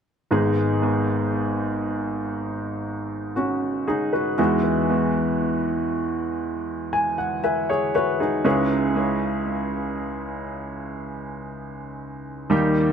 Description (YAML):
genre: pop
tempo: 59 BPM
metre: 4/4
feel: straight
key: G# minor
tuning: A4 = 440 Hz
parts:
  - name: clear baby grand piano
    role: accompaniment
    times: 0.3-12.9 s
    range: G#1 to G#5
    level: -22 LUFS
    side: equal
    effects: analog delay
room: moderate spring reverb, RT60 2.0 s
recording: echo-heavy mix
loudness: -21 LUFS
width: side -7 dB against mid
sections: 0.3-12.9 A section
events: grand piano fill 6.4-8.5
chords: 0.3 G#m; 4.4 Eadd9; 8.5 C#m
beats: | 0.32 1.33 2.35 3.37 | 4.38 5.40 6.42 7.44 | 8.45 9.47 10.49 11.50 | 12.52